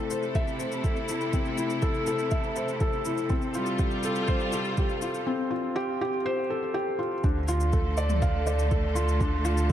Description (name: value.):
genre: piano and strings electronica.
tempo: 122 BPM.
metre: 4/4.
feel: straight.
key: D minor.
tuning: A4 = 440 Hz.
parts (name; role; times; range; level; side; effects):
bright studio string section; sustained chords; 0.0-9.7 s; C3 to A4; -32 LUFS; equal; sidechain pumping.
felt-muted upright piano; riff; 0.0-9.7 s; C4 to F5; -29 LUFS; left 1 dB; digital delay.
electronic shaker and toms; drums; 0.1-9.7 s; none; -40 LUFS; left 2 dB; overdrive.
electronic kick drum; drums; 0.4-9.7 s; none; -27 LUFS; equal; overdrive.
warm sub bass; bass; 7.2-9.7 s; D2; -26 LUFS; equal; sidechain pumping.
room: moderate huge ambient reverb, RT60 4.1 s.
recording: dark, warm production.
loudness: -25 LUFS.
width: side -11 dB against mid.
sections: 0.0-7.2 A section; 7.2-9.7 B section.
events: build-up 0.0-7.2; drop 7.2-9.7.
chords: 0.0 Am; 3.3 Fadd9; 7.2 Dm.